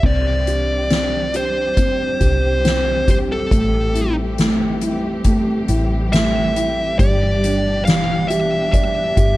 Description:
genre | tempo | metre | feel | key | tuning
pop ballad | 69 BPM | 4/4 | straight | unclear | A4 = 440 Hz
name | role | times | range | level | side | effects
fuzz lead guitar | melody | 0.0-9.4 s | A4 to F5 | -21 LUFS | right 1 dB | distortion
dark baby grand piano | accompaniment | 0.0-9.4 s | E3 to D5 | -22 LUFS | equal | none
dark studio string section | sustained chords | 0.0-9.4 s | B2 to G4 | -26 LUFS | equal | none
vintage muted fingered electric bass | bass | 0.0-9.4 s | G1 to C2 | -22 LUFS | equal | none
soft-mallet drum kit | drums | 0.0-9.4 s | crash cymbal, hi-hat, kick drum, snare drum | -20 LUFS | equal | none
room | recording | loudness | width
little or no reverb | dark, warm production | -15 LUFS | side -17 dB against mid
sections
0.0-9.4 A section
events
none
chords
0.0 Cadd9; 3.5 Am7; 7.0 Em7/G

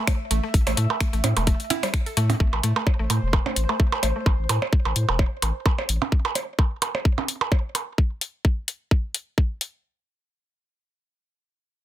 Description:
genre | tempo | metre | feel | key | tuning
minimal techno | 129 BPM | 4/4 | swing 55% on 16ths | A minor | A4 = 440 Hz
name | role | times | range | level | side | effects
bubbling stepped-filter texture | texture | 0.0-6.1 s | C5 to E5 | -35 LUFS | equal | chorus, built-in reverb, sidechain pumping
mallet-like synth pluck | riff | 0.1-4.2 s | G3 to A4 | -30 LUFS | right 1 dB | chorus, sidechain pumping, digital delay
electronic kick drum | drums | 0.1-9.5 s | none | -20 LUFS | equal | none
techno drum kit | drums | 0.1-9.7 s | finger snaps, hi-hat | -26 LUFS | left 3 dB | soft clipping on snare
percussion blips | percussion | 0.1-7.9 s | none | -26 LUFS | right 6 dB | overdrive
saturated sub bass | bass | 0.3-6.0 s | E1 to A2 | -23 LUFS | equal | sidechain pumping
room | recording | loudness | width
little or no reverb | dense, heavily limited modern master | -21 LUFS | side -13 dB against mid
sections
0.0-2.4 A section; 2.4-9.8 B section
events
drop 0.0-2.4; filter sweep on synth arpeggio sound 2.4-4.3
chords
0.0 A5

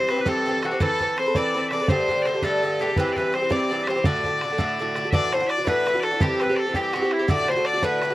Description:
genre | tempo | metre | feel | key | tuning
celtic folk, Celtic jig | 111 BPM (dotted quarters) | 6/8 | straight | D mixolydian | A4 = 440 Hz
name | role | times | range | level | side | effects
loud bright bagpipes | melody | 0.0-8.1 s | E4 to E5 | -26 LUFS | equal | none
dark fiddle | second line | 0.0-8.1 s | E4 to D5 | -25 LUFS | left 2 dB | none
Irish bouzouki | accompaniment | 0.0-8.1 s | G2 to B4 | -25 LUFS | right 1 dB | slapback echo
bodhran | percussion | 0.1-8.1 s | none | -26 LUFS | right 1 dB | none
room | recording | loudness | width
light reverb | recorded outdoors, with no room sound | -20 LUFS | side -16 dB against mid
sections
0.0-5.1 A section; 5.1-8.1 B section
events
none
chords
0.0 C; 0.8 Amadd9; 1.9 Gsus2; 3.0 C; 4.0 D; 5.1 Dadd9; 6.2 C; 7.3 D

